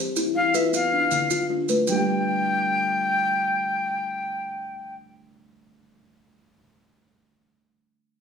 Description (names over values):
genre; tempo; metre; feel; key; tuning
southern african traditional, mbira-style interlocking cycle; 104 BPM (dotted quarters); 12/8; straight; G mixolydian; A4 = 440 Hz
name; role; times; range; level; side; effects
buzzing kalimba; arpeggios; 0.0-5.7 s; D3 to G5; -26 LUFS; left 4 dB; none
kalimba; arpeggios; 0.0-5.7 s; D3 to G5; -29 LUFS; right 3 dB; none
maracas; percussion; 0.2-2.1 s; none; -29 LUFS; right 6 dB; none
breathy bright concert flute; melody; 0.4-4.9 s; E5 to G5; -23 LUFS; left 2 dB; none
room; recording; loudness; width
moderate studio ambience, RT60 0.5 s; studio reverb; -21 LUFS; side -6 dB against mid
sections
0.0-1.9 A section; 1.9-4.2 B section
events
none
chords
0.0 Em; 0.7 Dm; 1.9 G5